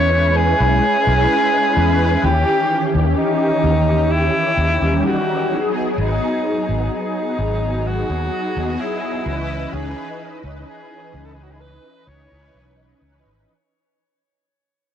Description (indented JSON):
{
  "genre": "vaporwave",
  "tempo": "64 BPM",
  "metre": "4/4",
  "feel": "straight",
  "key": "unclear",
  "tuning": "A4 = 444 Hz",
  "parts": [
    { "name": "clear alto saxophone", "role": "melody", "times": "0.0-13.0 s", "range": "D#4 to C#5", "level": "-20 LUFS", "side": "equal", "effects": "tape echo" },
    { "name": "mellow synth brass", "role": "accompaniment", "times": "0.0-13.5 s", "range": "D#3 to D#5", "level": "-21 LUFS", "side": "equal", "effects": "ensemble chorus" },
    { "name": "fretless electric bass", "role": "bass", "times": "0.0-13.4 s", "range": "G#1 to E2", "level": "-19 LUFS", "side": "equal", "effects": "none" }
  ],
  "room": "light reverb, small room ambience",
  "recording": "dry, gritty hardware recording, cassette tape",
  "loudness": "-16 LUFS",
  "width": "side -9 dB against mid",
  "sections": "0.0-13.5 A section",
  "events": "fade-out 3.5-13.5",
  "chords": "0.0 E6; 2.2 D#7b9; 5.5 G#m7; 9.3 C#m9"
}